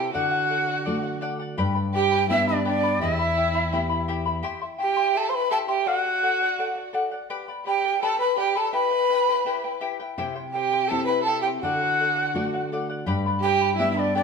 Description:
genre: andean folk, Andean ensemble.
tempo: 84 BPM.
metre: 2/4.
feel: straight.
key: unclear.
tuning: A4 = 441 Hz.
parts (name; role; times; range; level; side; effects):
breathy mellow quena; melody; 0.0-14.2 s; D5 to C6; -24 LUFS; right 2 dB; none.
warm violin; second line; 0.0-14.2 s; D4 to C5; -27 LUFS; right 1 dB; none.
charango; accompaniment; 0.0-14.2 s; E4 to C6; -29 LUFS; left 5 dB; none.
nylon-string guitar; accompaniment; 0.0-4.4, 10.2-14.2 s; E2 to G4; -28 LUFS; left 1 dB; none.
room: wet stone room reverb, RT60 1.1 s.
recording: band playing live in one room.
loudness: -21 LUFS.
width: side -5 dB against mid.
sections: 0.0-4.4 A section; 4.4-14.2 A section.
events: none.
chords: 0.1 D; 1.6 G; 3.0 Em; 4.4 C; 5.9 D; 7.3 G; 8.7 Em; 10.2 C; 11.6 D; 13.1 G.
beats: | 0.14 0.86 | 1.58 2.29 | 3.01 3.73 | 4.44 5.16 | 5.87 6.59 | 7.30 8.02 | 8.74 9.45 | 10.17 10.89 | 11.62 12.34 | 13.06 13.78.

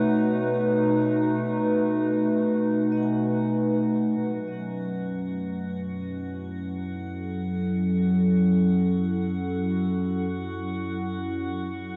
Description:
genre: ambient.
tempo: free time.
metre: none.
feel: none.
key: F# dorian.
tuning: A4 = 440 Hz.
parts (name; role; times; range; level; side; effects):
warbly tape-like pad; sustained chords; 0.0-12.0 s; B2 to B4; -26 LUFS; equal; chorus, built-in reverb.
vibraphone with hard mallets; arpeggios; 0.0-4.2 s; C#5 to G#5; -47 LUFS; equal; diffuse ambient delay.
drifting glass-harmonics texture; texture; 0.0-12.0 s; F#4 to F#5; -45 LUFS; equal; chorus, built-in reverb.
warm sub bass; bass; 4.2-12.0 s; F#2; -40 LUFS; equal; none.
room: wet huge ambient reverb, RT60 7.9 s.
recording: dark, warm production, nothing above 10.4 kHz.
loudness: -26 LUFS.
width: mono.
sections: 0.0-4.2 A section; 4.2-12.0 B section.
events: fade-in on sub bass 4.2-12.0; filter sweep on ambient pad 4.2-12.0.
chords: 0.0 B7; 4.2 F#m7.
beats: free time.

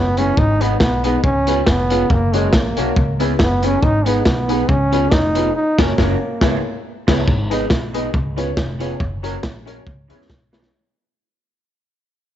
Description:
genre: ska.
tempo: 139 BPM.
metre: 4/4.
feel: swing 54% on 8ths.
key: unclear.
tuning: A4 = 439 Hz.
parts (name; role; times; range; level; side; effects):
clear trombone; melody; 0.0-6.8 s; G#3 to D#4; -19 LUFS; equal; none.
upright bass; bass; 0.0-10.7 s; E#1 to E2; -22 LUFS; equal; none.
electric guitar through a small old amp; accompaniment; 0.2-10.7 s; E3 to G#4; -25 LUFS; right 10 dB; phaser.
warm upright piano; stabs; 0.2-10.7 s; B3 to D#5; -25 LUFS; left 10 dB; none.
crunchy breakbeat drum kit; drums; 0.2-10.7 s; crash cymbal, hi-hat, kick drum, snare drum; -18 LUFS; equal; vintage 12-bit sampler grit.
room: light reverb, small room ambience.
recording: 1960s-style stereo with parts hard left and right, nothing above 7.8 kHz.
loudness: -15 LUFS.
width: side -11 dB against mid.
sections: 0.0-7.3 A section; 7.3-10.7 B section.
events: band accent 5.5-7.3; fade-out 7.3-10.7; drum fill 10.3-10.7.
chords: 0.4 G#m; 1.2 C#7; 2.1 F#; 3.0 C#m7; 3.8 G#m; 4.7 C#7; 5.5 F#; 6.4 C#m7; 7.3 G#m; 8.1 C#7; 9.0 F#; 9.9 C#m7.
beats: | 0.37 0.81 1.24 1.67 | 2.10 2.53 2.96 3.39 | 3.82 4.25 4.69 5.12 | 5.55 5.98 6.41 6.84 | 7.27 7.70 8.13 8.57 | 9.00 9.43 9.86 10.29.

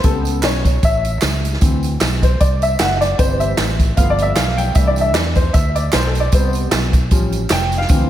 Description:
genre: uptempo gospel.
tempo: 153 BPM.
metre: 4/4.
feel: swing 55% on 8ths.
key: C major.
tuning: A4 = 439 Hz.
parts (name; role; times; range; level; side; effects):
warm baby grand piano; accompaniment; 0.0-8.1 s; C3 to G5; -19 LUFS; left 1 dB; analog chorus.
fingered electric bass; bass; 0.0-8.1 s; E#1 to E2; -19 LUFS; equal; none.
swinging big-band drum kit; drums; 0.0-8.0 s; hi-hat, kick drum, snare drum; -17 LUFS; equal; none.
tambourine and handclaps; percussion; 0.0-8.0 s; none; -28 LUFS; right 6 dB; none.
room: moderate lush hall reverb, RT60 1.9 s, small room ambience.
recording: dreamy mix soaked in reverb.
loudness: -14 LUFS.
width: side -12 dB against mid.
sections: 0.0-8.1 A section.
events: grand piano solo 0.0-8.1.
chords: 0.0 A7; 1.6 D7; 3.2 C/G; 4.0 G7; 4.8 C6; 6.3 Gadd11; 7.1 Aaug7.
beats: | 0.04 0.43 0.83 1.22 | 1.61 2.01 2.40 2.79 | 3.19 3.58 3.97 4.37 | 4.76 5.15 5.54 5.94 | 6.33 6.72 7.11 7.50 | 7.89.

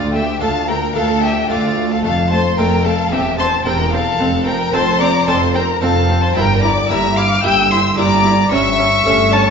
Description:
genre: classical, baroque-style concerto movement with solo episodes.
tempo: 111 BPM.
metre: 4/4.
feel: straight.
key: D minor.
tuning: A4 = 440 Hz.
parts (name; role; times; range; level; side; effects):
rich chamber violin section; melody; 0.0-9.5 s; F5 to G6; -22 LUFS; left 3 dB; none.
rich violin; melody; 0.0-9.5 s; D5 to E6; -19 LUFS; left 2 dB; none.
clear studio violin section; second line; 0.0-9.5 s; F4 to G5; -20 LUFS; left 3 dB; none.
harpsichord; accompaniment; 0.0-9.5 s; D2 to Bb4; -22 LUFS; equal; none.
rich symphonic double bass section; bass; 0.0-9.5 s; E1 to D2; -21 LUFS; right 3 dB; none.
warm chamber cello section; bass; 0.0-9.5 s; D2 to G2; -22 LUFS; right 2 dB; none.
rich studio viola section; accompaniment; 0.1-9.4 s; A3 to E4; -23 LUFS; right 1 dB; none.
room: wet recital hall reverb, RT60 1.5 s.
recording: recorded in a church or concert hall, nothing above 7.6 kHz.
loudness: -13 LUFS.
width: side -6 dB against mid.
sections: 0.0-9.5 A section.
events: none.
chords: 0.0 Dm; 2.0 F; 3.1 C7/E; 4.2 F; 6.4 Edim/G; 8.5 A7/G.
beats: 0.41 0.95 1.50 | 2.04 2.59 3.12 3.66 | 4.20 4.74 5.28 5.82 | 6.36 6.90 7.44 7.98 | 8.52 9.05.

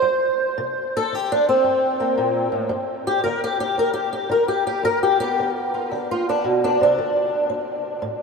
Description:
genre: acoustic country blues, solo or duo.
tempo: 113 BPM.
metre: 4/4.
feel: swing 67% on 8ths.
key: G mixolydian.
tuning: A4 = 441 Hz.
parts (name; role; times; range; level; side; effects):
fingerpicked swing-style acoustic guitar; solo; 0.0-8.2 s; G2 to C5; -19 LUFS; equal; analog chorus.
room: wet huge ambient reverb, RT60 7.6 s.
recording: dreamy mix soaked in reverb.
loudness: -19 LUFS.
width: side -4 dB against mid.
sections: 0.0-8.2 A section.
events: steel-string acoustic guitar solo 0.0-8.2.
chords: 0.0 C5; 0.6 Cm7; 2.7 G; 7.0 D5.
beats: 0.04 | 0.58 1.11 1.65 2.18 | 2.71 3.25 3.78 4.31 | 4.84 5.38 5.91 6.44 | 6.97 7.50 8.03.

